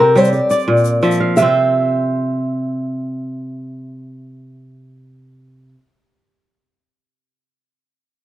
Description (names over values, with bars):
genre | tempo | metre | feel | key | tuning
west african traditional, West African string and xylophone music | 115 BPM (dotted quarters) | 12/8 | straight | C mixolydian | A4 = 440 Hz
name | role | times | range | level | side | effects
fingerpicked old ladder-braced acoustic guitar | melody | 0.0-5.7 s | Bb4 to E5 | -16 LUFS | right 1 dB | none
kora | arpeggios | 0.0-5.8 s | Bb2 to F5 | -17 LUFS | equal | none
tube shaker | percussion | 0.2-1.5 s | none | -35 LUFS | left 16 dB | none
room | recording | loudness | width
small room ambience | dry, close 1970s-style studio recording | -14 LUFS | side -14 dB against mid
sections
0.0-1.4 A section; 1.4-5.6 B section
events
none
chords
0.3 Bb; 1.4 C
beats
0.33 0.85 | 1.37 1.89 2.42 2.94 | 3.46 3.98 4.51 5.03